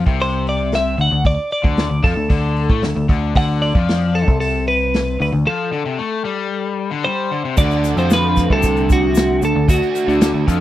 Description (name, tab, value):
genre	indie rock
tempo	114 BPM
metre	4/4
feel	straight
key	D mixolydian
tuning	A4 = 441 Hz
part	crunchy overdriven guitar	riff	0.0-10.6 s	C3 to A3	-22 LUFS	left 7 dB	spring reverb
part	overdriven picked electric bass	bass	0.0-10.6 s	C2 to A2	-20 LUFS	equal	none
part	unplugged drum kit	drums	0.1-10.6 s	crash cymbal, hi-hat, kick drum, snare drum	-17 LUFS	equal	none
part	twelve-string electric guitar	melody	0.2-10.4 s	F#4 to F#5	-20 LUFS	equal	slapback echo
part	overdriven electric guitar	riff	7.6-10.6 s	D3 to F#4	-21 LUFS	right 11 dB	ensemble chorus
part	tube shaker	percussion	7.6-10.6 s	none	-35 LUFS	left 19 dB	none
room	little or no reverb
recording	dry, close 1970s-style studio recording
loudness	-15 LUFS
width	side -13 dB against mid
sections	0.0-7.6 A section; 7.6-10.6 B section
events	break 5.5-7.6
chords	0.0 D5; 7.6 D